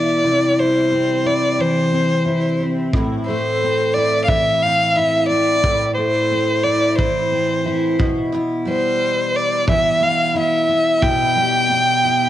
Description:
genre	acoustic pop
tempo	89 BPM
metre	4/4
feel	swing 55% on 16ths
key	A minor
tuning	A4 = 438 Hz
part	clear violin	melody	0.0-12.3 s	C5 to G5	-17 LUFS	equal	cassette tape, plate reverb, tape echo
part	picked steel-string acoustic guitar	accompaniment	0.0-12.3 s	A2 to E4	-19 LUFS	equal	double-tracked left and right, cassette tape, plate reverb
part	kick drum	drums	2.9-11.2 s	none	-20 LUFS	equal	cassette tape
room	wet booth ambience, RT60 0.2 s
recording	home recording on cassette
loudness	-15 LUFS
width	side -12 dB against mid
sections	0.0-12.3 A section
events	none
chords	0.2 C; 2.9 Am; 8.0 Em/B

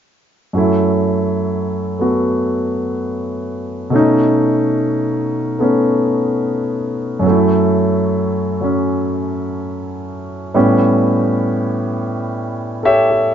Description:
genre	solo jazz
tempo	72 BPM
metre	4/4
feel	swing 69% on 8ths, rubato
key	unclear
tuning	A4 = 441 Hz
part	clear concert grand piano	solo	0.5-13.3 s	F#2 to E5	-14 LUFS	equal	none
room	moderate large studio reverb, RT60 0.9 s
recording	nothing above 7.5 kHz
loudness	-14 LUFS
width	side -9 dB against mid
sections	0.5-13.3 A section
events	none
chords	0.5 F#m7; 3.9 B9; 7.2 F#m7; 10.6 A9

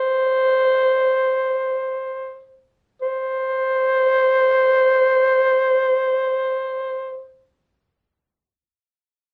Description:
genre	klezmer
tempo	free time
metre	none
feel	none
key	unclear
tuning	A4 = 441 Hz
part	growling clarinet	solo	0.0-7.3 s	C5	-19 LUFS	equal	none
room	wet studio reverb, RT60 0.5 s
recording	lossy compression artefacts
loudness	-19 LUFS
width	mono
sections	0.0-3.0 A section; 3.0-6.5 B section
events	slowing down 0.0-3.0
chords	none

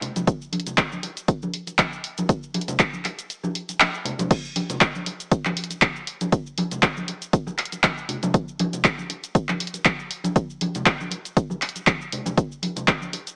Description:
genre	house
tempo	119 BPM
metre	4/4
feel	swing 55% on 16ths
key	none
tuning	none
part	punchy analog drum machine	drums	0.0-13.4 s	crash cymbal, handclaps, hi-hat, shaker	-25 LUFS	equal	overdrive
part	congas	percussion	0.0-13.2 s	none	-31 LUFS	equal	sidechain pumping on perc
part	electronic kick drum	drums	0.3-13.0 s	none	-24 LUFS	equal	overdrive
room	light reverb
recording	small speaker sound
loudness	-24 LUFS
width	mono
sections	0.0-4.3 A section; 4.3-13.4 B section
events	kick drops out 3.3-4.3; drop 4.3-13.4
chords	none

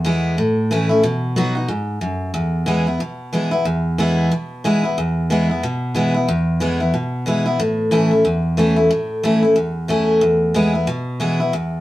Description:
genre	rock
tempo	183 BPM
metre	4/4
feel	swing 59% on 8ths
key	E major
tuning	A4 = 441 Hz
part	picked steel-string acoustic guitar	solo	0.0-11.8 s	E2 to F#4	-16 LUFS	equal	none
room	wet studio reverb, RT60 0.6 s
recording	band playing live in one room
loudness	-16 LUFS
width	side -15 dB against mid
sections	0.0-2.3 A section; 2.3-11.8 A section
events	none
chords	0.4 A; 1.0 B; 2.3 E; 7.6 A; 10.2 E

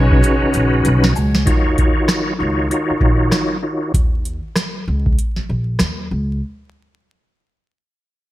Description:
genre	hip hop, boom-bap hip-hop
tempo	97 BPM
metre	4/4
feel	swing 61% on 16ths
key	Eb minor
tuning	A4 = 440 Hz
part	bright tonewheel organ	accompaniment	0.0-3.9 s	Db3 to Db5	-18 LUFS	equal	chorus vibrato, fast rotary speaker, cassette tape, high-pass filter, low-pass filter
part	warm horn section	stabs	0.0-1.1 s	Ab3 to Db5	-26 LUFS	right 3 dB	high-pass filter, low-pass filter, digital delay
part	upright bass	bass	0.0-6.4 s	Bb1 to Eb2	-19 LUFS	equal	none
part	booming analog drum machine	drums	0.1-6.0 s	hi-hat, kick drum, rim click, shaker, snare drum	-17 LUFS	equal	gated reverb
part	maracas and woodblock	percussion	0.2-1.3 s	none	-35 LUFS	left 7 dB	none
room	small room ambience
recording	bright 1980s-style digital production, vinyl crackle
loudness	-15 LUFS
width	side -15 dB against mid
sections	0.0-1.5 A section; 1.5-6.4 B section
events	drum fill 0.2-1.5; break 3.9-6.4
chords	0.0 Db9sus4; 1.5 Ebm7

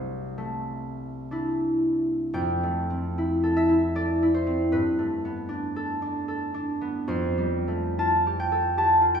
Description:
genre	classical, solo harp piece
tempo	54-80 BPM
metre	3/4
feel	rubato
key	F lydian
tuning	A4 = 440 Hz
part	concert harp	solo	0.0-9.2 s	C2 to A5	-23 LUFS	equal	none
room	wet recital hall reverb, RT60 1.5 s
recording	heard from further back in the room, studio ambience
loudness	-23 LUFS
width	side -6 dB against mid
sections	0.0-2.3 A section; 2.3-9.2 B section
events	none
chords	0.0 C69; 2.3 Fmaj9; 4.7 Gadd9; 7.1 Fadd9

